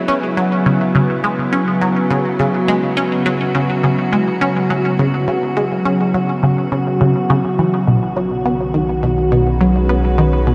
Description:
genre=ambient, sequencer-driven space music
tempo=104 BPM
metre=4/4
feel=straight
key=C# minor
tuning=A4 = 440 Hz
part: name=evolving wavetable pad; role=sustained chords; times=0.0-10.5 s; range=C#3 to B4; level=-19 LUFS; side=equal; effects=chorus, built-in reverb, shimmer reverb
part: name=resonant blip pluck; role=riff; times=0.0-10.5 s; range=B2 to C#4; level=-19 LUFS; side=equal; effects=phaser, subtle chorus, delay
part: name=warm sub bass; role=bass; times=7.9-10.5 s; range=B1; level=-22 LUFS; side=equal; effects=none
room=wet huge ambient reverb, RT60 7.2 s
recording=in a vast, echoing space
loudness=-16 LUFS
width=mono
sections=0.0-7.9 A section; 7.9-10.5 B section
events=none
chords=0.0 C#m; 7.9 B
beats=0.38 | 0.95 1.53 2.11 2.68 | 3.26 3.84 4.41 4.99 | 5.57 6.14 6.72 7.30 | 7.88 8.45 9.03 9.61 | 10.18

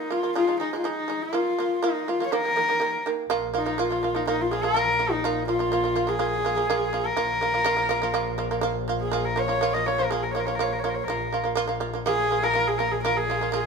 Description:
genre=mongolian traditional, Mongolian folk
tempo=123 BPM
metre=4/4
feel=straight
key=Bb yu mode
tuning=A4 = 440 Hz
part: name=clear horsehead fiddle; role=melody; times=0.0-13.7 s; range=Eb4 to Eb5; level=-24 LUFS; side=left 2 dB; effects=none
part: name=shamisen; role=arpeggios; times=0.0-13.6 s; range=Eb3 to F4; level=-26 LUFS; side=right 5 dB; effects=none
part: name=clear double bass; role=drone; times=3.3-13.7 s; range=Bb1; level=-33 LUFS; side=left 5 dB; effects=none
room=moderate studio reverb, RT60 0.9 s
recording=band playing live in one room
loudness=-22 LUFS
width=side -5 dB against mid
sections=0.0-3.3 A section; 3.3-13.7 B section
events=none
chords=0.4 Ab5; 1.3 Bb5; 2.3 Eb5; 3.3 Bb5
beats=0.35 0.84 | 1.33 1.82 2.31 2.80 | 3.29 3.77 4.26 4.75 | 5.23 5.72 6.21 6.69 | 7.18 7.67 8.15 8.64 | 9.13 9.62 10.10 10.59 | 11.08 11.57 12.05 12.54 | 13.04 13.53

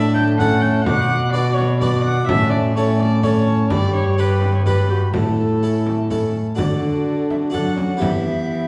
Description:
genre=classical, renaissance-style consort dance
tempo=126 BPM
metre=3/4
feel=straight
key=D major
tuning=A4 = 439 Hz
part: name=alto recorder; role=melody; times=0.0-8.7 s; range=D5 to D6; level=-31 LUFS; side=equal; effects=none
part: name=warm viola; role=second line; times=0.0-8.7 s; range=F#4 to G5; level=-27 LUFS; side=equal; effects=none
part: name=bright trombone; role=accompaniment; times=0.0-8.7 s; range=B3 to G4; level=-26 LUFS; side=equal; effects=none
part: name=harpsichord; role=accompaniment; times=0.0-8.7 s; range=G2 to B4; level=-28 LUFS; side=equal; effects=none
part: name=rich cello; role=bass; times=0.0-8.7 s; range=G2 to F#3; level=-22 LUFS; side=equal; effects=none
part: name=frame drum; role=percussion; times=0.2-8.2 s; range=none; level=-28 LUFS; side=equal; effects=none
room=wet recital hall reverb, RT60 1.4 s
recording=heard from further back in the room, vinyl crackle, nothing above 11.0 kHz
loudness=-18 LUFS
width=mono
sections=0.0-6.6 A section; 6.6-8.7 B section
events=none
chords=0.4 A; 0.9 Bm; 2.3 A; 3.7 G; 5.1 A; 6.6 D; 8.0 Em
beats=0.40 | 0.87 1.34 1.81 | 2.29 2.76 3.23 | 3.71 4.18 4.66 | 5.14 5.62 6.11 | 6.59 7.07 7.54 | 8.01 8.49

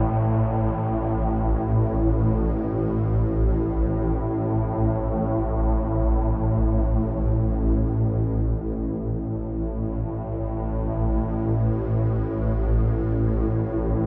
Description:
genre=ambient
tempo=free time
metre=none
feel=none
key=unclear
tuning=A4 = 440 Hz
part: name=swarming drone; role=solo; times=0.0-14.1 s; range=A1 to A2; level=-24 LUFS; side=equal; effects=built-in reverb, diffuse ambient delay
room=wet huge ambient reverb, RT60 8.3 s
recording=dark, warm production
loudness=-24 LUFS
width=mono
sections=0.0-8.4 A section; 8.4-14.1 B section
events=none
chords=none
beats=free time

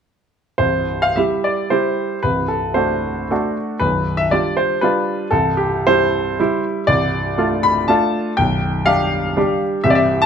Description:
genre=classical, romantic triple-time dance for piano with dotted rhythms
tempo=100-129 BPM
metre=3/4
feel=rubato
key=C major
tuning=A4 = 442 Hz
part: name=clear baby grand piano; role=solo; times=0.6-10.3 s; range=B0 to B5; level=-15 LUFS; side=equal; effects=none
room=light reverb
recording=close, detailed microphones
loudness=-16 LUFS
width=side -7 dB against mid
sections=0.6-10.3 A section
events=none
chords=0.6 C; 2.2 D7/C; 3.8 G7/B; 5.3 C; 6.9 Dm7/C; 8.4 G7/B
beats=| 0.60 1.17 1.72 | 2.23 2.76 3.31 | 3.81 4.31 4.82 | 5.30 5.87 6.39 | 6.87 7.37 7.88 | 8.36 8.85 9.37 | 9.84

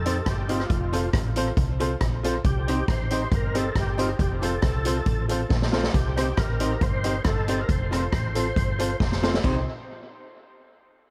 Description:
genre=ska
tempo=137 BPM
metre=4/4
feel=straight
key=C dorian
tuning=A4 = 440 Hz
part: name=overdriven tonewheel organ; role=melody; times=0.0-9.0 s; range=F4 to C5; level=-35 LUFS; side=equal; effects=chorus vibrato, slow rotary speaker, dub echo
part: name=hollow-body short-scale fingered electric bass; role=bass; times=0.0-9.7 s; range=F1 to F2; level=-30 LUFS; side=equal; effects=none
part: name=archtop guitar, miked and amplified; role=accompaniment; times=0.1-9.6 s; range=C4 to C5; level=-33 LUFS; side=equal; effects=dub echo
part: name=bright upright piano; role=stabs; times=0.1-9.6 s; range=Eb4 to C5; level=-35 LUFS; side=equal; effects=dub echo
part: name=street-band drum kit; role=drums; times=0.1-9.5 s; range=crash cymbal, hi-hat, kick drum, rim click, snare drum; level=-28 LUFS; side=equal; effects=none
room=light reverb, small room ambience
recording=none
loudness=-24 LUFS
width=mono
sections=0.0-5.9 A section; 5.9-9.4 B section; 9.4-11.1 C section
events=drum fill 5.5-5.9, 9.0-9.4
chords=0.0 Cm; 0.7 F; 2.4 Cm; 4.2 F; 5.9 Cm; 7.7 F; 9.4 Cm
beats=0.27 | 0.70 1.14 1.57 2.01 | 2.45 2.88 3.32 3.76 | 4.19 4.63 5.07 5.50 | 5.94 6.38 6.81 7.25 | 7.69 8.13 8.56 9.00 | 9.44

